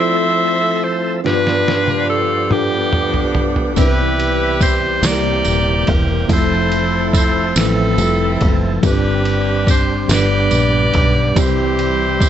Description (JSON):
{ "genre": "slow gospel", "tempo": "48 BPM (dotted quarters)", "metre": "6/8", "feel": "straight", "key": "C major", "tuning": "A4 = 438 Hz", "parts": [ { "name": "edgy saxophone section", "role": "melody", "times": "0.0-12.3 s", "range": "B3 to E5", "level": "-18 LUFS", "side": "equal", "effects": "none" }, { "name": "mellow tine electric piano", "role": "accompaniment", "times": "0.0-12.3 s", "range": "G2 to D5", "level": "-19 LUFS", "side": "left 1 dB", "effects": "medium stereo tremolo" }, { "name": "tonewheel organ", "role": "sustained chords", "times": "0.0-12.3 s", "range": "C3 to E5", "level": "-24 LUFS", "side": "right 3 dB", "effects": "fast rotary speaker, overdrive" }, { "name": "trip hop sampler-style drum kit", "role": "drums", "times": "1.3-12.3 s", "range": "kick drum, ride cymbal, snare drum, toms", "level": "-19 LUFS", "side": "equal", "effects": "none" }, { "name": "fingered electric bass", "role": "bass", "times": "3.8-12.3 s", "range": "Eb1 to C2", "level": "-19 LUFS", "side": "equal", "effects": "none" }, { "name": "tambourine", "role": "percussion", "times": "3.8-12.3 s", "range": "none", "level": "-26 LUFS", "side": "right 8 dB", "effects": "none" } ], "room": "little or no reverb", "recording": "nothing above 8.0 kHz", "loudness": "-13 LUFS", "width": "side -10 dB against mid", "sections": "0.0-12.3 A section", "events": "drum fill 1.2-3.8", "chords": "0.0 Fmaj7; 1.2 G7; 3.8 Cmaj7; 5.0 C7; 6.3 Fmaj7; 8.8 Gsus4; 10.1 G; 11.4 C" }